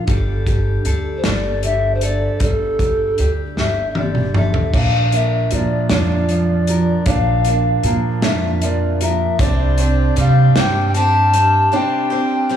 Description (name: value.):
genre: indie folk with a building arrangement.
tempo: 52 BPM (dotted quarters).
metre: 6/8.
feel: straight.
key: unclear.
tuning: A4 = 439 Hz.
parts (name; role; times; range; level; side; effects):
fingerpicked steel-string acoustic guitar; accompaniment; 0.0-9.4 s; Bb2 to Bb4; -24 LUFS; left 2 dB; slapback echo.
upright bass; bass; 0.1-11.6 s; G1 to C3; -18 LUFS; right 1 dB; none.
loose indie drum kit; drums; 0.1-11.5 s; crash cymbal, hi-hat, kick drum, snare drum, toms; -20 LUFS; equal; none.
mellow hollow polished pan flute; melody; 1.2-12.6 s; A4 to A5; -20 LUFS; left 2 dB; slapback echo, analog delay.
warm upright piano; arpeggios; 4.7-12.6 s; F3 to D4; -22 LUFS; right 7 dB; slapback echo, analog delay.
picked swing-style acoustic guitar; accompaniment; 9.4-12.6 s; C3 to G4; -24 LUFS; left 6 dB; slapback echo.
room: little or no reverb.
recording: live gig heard through the venue's PA, club reverb, small room ambience.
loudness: -14 LUFS.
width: side -9 dB against mid.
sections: 0.0-4.7 A section; 4.7-12.6 B section.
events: drum fill 3.6-4.7; break 11.7-12.6.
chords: 0.1 Gsus2; 4.7 Bb; 9.4 Csus2.